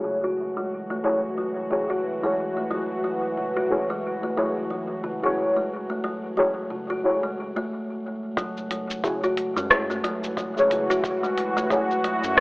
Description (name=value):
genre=organic downtempo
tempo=90 BPM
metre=4/4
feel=swing 58% on 16ths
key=F# minor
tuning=A4 = 440 Hz
part: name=deep mellow chord stab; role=accompaniment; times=0.0-12.4 s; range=A3 to C#5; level=-25 LUFS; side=equal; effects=chorus, phaser, sidechain pumping, analog delay
part: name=bowed-like drone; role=sustained chords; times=0.0-12.4 s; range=E3 to F#4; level=-30 LUFS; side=equal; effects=built-in reverb, sidechain pumping
part: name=kalimba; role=arpeggios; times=0.0-12.4 s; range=C#3 to F#4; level=-29 LUFS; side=equal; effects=low-pass filter, analog delay
part: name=round analog bass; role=bass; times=0.0-12.4 s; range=E1 to F#2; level=-46 LUFS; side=equal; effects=tube saturation, sidechain pumping
part: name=electronic kick drum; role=drums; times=8.4-12.4 s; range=none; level=-31 LUFS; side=equal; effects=overdrive, small room ambience
part: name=organic electronic drum kit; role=drums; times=8.4-12.4 s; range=cabasa, hi-hat, rim click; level=-23 LUFS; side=equal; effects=low-pass filter on hats, small room ambience, low-pass filter on perc, low-pass filter on snare
room=light reverb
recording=dry, gritty hardware recording, telephone sound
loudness=-23 LUFS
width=side -24 dB against mid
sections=0.0-8.4 A section; 8.4-12.4 B section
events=filter sweep on kalimba 0.0-8.4; filter sweep on synth drone 0.0-8.4; stop 7.7-8.4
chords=0.0 F#m7